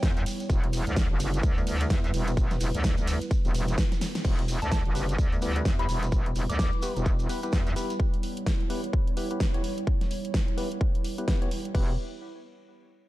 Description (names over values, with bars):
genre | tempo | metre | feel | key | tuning
bass house | 128 BPM | 4/4 | swing 59% on 16ths | E dorian | A4 = 440 Hz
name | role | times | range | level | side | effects
dark analog pad | sustained chords | 0.0-12.0 s | G3 to C#5 | -36 LUFS | right 2 dB | chorus, sidechain pumping
metallic wobble bass | bass | 0.0-7.7, 11.7-12.0 s | E1 to E2 | -28 LUFS | equal | chorus, overdrive, sidechain pumping
big-room dance drum kit | drums | 0.0-11.9 s | crash cymbal, hi-hat, ride cymbal, snare drum | -35 LUFS | equal | none
electronic kick drum | drums | 0.0-11.9 s | none | -26 LUFS | equal | none
shekere | percussion | 0.0-8.0 s | none | -43 LUFS | right 3 dB | none
soft synth bell | melody | 4.6-7.0 s | A5 to D6 | -38 LUFS | left 1 dB | chorus, phaser, digital delay
percussive organ stab | stabs | 5.0-11.9 s | B3 to C#5 | -36 LUFS | left 2 dB | chorus, sidechain pumping, digital delay
room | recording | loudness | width
digital ambience | dark, warm production | -25 LUFS | side -16 dB against mid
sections
0.0-4.2 A section; 4.2-11.7 B section; 11.7-13.1 C section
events
drop 0.0-4.2; drum fill 3.9-4.2; band accent 4.1; filter sweep on synth stab 4.2-11.7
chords
0.0 Em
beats
0.03 | 0.50 0.97 1.43 1.90 | 2.37 2.84 3.31 3.78 | 4.25 4.72 5.18 5.65 | 6.12 6.59 7.06 7.53 | 8.00 8.47 8.93 9.40 | 9.87 10.34 10.81 11.28 | 11.75